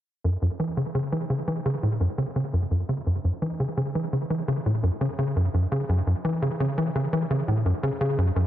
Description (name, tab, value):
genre	ambient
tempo	85 BPM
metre	4/4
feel	straight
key	F# minor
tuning	A4 = 442 Hz
part	tight sequencer bass	solo	0.2-8.5 s	F#2 to E3	-23 LUFS	equal	wide subtle chorus, cassette tape, analog delay
room	moderate spring reverb, RT60 2.3 s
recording	echo-heavy mix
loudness	-23 LUFS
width	side -12 dB against mid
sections	0.2-8.5 A section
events	none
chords	none